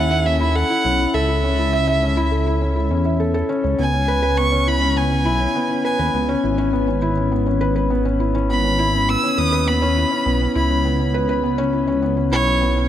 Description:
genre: piano and strings electronica.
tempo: 102 BPM.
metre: 4/4.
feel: straight.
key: unclear.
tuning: A4 = 439 Hz.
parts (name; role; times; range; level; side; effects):
warm violin; melody; 0.0-12.9 s; C#5 to E6; -22 LUFS; right 2 dB; digital delay.
felt-muted upright piano; riff; 0.0-12.9 s; B3 to E5; -20 LUFS; left 2 dB; digital delay.
dark detuned saw bass; bass; 0.0-12.9 s; G#1 to E2; -21 LUFS; right 1 dB; none.
room: light reverb, studio reverb.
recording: none.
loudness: -16 LUFS.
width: side -10 dB against mid.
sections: 0.0-12.9 A section.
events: none.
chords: 0.0 A; 3.8 C#m7.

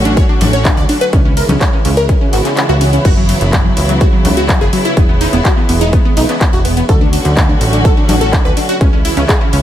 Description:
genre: progressive house.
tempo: 125 BPM.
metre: 4/4.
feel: straight.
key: unclear.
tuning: A4 = 444 Hz.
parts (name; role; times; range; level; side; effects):
bright symphonic string section; sustained chords; 0.0-9.6 s; C#3 to F#4; -18 LUFS; right 1 dB; sidechain pumping.
plucky analog bass; bass; 0.0-9.6 s; E1 to D2; -15 LUFS; equal; sidechain pumping.
wide unison pluck; arpeggios; 0.1-9.6 s; F#3 to D5; -17 LUFS; equal; sidechain pumping, dub echo.
deep house drum kit; drums; 0.1-9.6 s; crash cymbal, handclaps, hi-hat, ride cymbal; -20 LUFS; equal; none.
electronic kick drum; drums; 0.2-9.4 s; none; -12 LUFS; equal; none.
congas; percussion; 0.4-4.3, 8.1-8.2 s; none; -18 LUFS; left 2 dB; sidechain pumping on perc.
swell; sound effects; 2.2-3.0 s; none; -25 LUFS; left 1 dB; none.
room: little or no reverb.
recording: none.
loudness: -9 LUFS.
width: side -11 dB against mid.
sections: 0.0-9.6 A section.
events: swell 2.2-3.0; kick drops out 2.6-3.0.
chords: 0.0 Dmaj7; 1.1 C#m7; 3.0 F#7sus4; 5.0 E6; 6.9 Dmaj7; 8.8 C#m7.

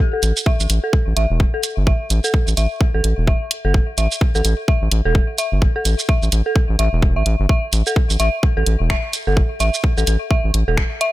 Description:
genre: minimal techno.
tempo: 128 BPM.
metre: 4/4.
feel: swing 59% on 16ths.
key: unclear.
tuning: A4 = 440 Hz.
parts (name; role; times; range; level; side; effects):
dark detuned synth bell; riff; 0.1-11.1 s; A4 to E5; -23 LUFS; equal; chorus, tremolo, sidechain pumping, low-pass filter, ping-pong delay.
round analog bass; bass; 0.2-10.8 s; E1 to A1; -17 LUFS; equal; sidechain pumping.
garage drum kit; drums; 0.2-11.1 s; finger snaps, hi-hat, shaker; -23 LUFS; right 2 dB; small room ambience.
electronic kick drum; drums; 0.5-10.9 s; none; -16 LUFS; equal; small room ambience.
room: little or no reverb.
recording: none.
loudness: -15 LUFS.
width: side -16 dB against mid.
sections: 0.0-11.1 A section.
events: filter sweep on synth bell 0.0-11.1.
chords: 0.0 A5.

